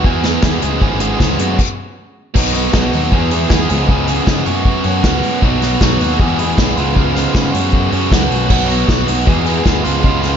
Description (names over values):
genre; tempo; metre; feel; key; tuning
indie rock; 156 BPM; 4/4; straight; B major; A4 = 440 Hz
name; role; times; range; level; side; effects
biting overdriven guitar; riff; 0.0-10.4 s; E2 to G#4; -16 LUFS; right 1 dB; spring reverb, slapback echo
fuzz picked electric bass; bass; 0.0-10.3 s; G#1 to C#3; -19 LUFS; equal; overdrive
unplugged drum kit; drums; 0.0-10.3 s; crash cymbal, hi-hat, kick drum, snare drum; -16 LUFS; equal; none
room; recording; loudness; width
moderate recital hall reverb, RT60 1.4 s, small room ambience; big arena sound, nothing above 7.5 kHz; -12 LUFS; side -8 dB against mid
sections
0.0-2.4 A section; 2.4-10.4 B section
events
stop 1.6-2.4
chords
0.0 Emaj7; 0.6 C#7; 1.4 F#sus4; 2.4 B; 3.1 Emaj7; 3.7 C#7; 4.5 F#sus4; 5.4 B; 6.2 E; 6.8 C#7; 7.5 F#sus4; 8.5 B; 9.3 E; 9.9 C#7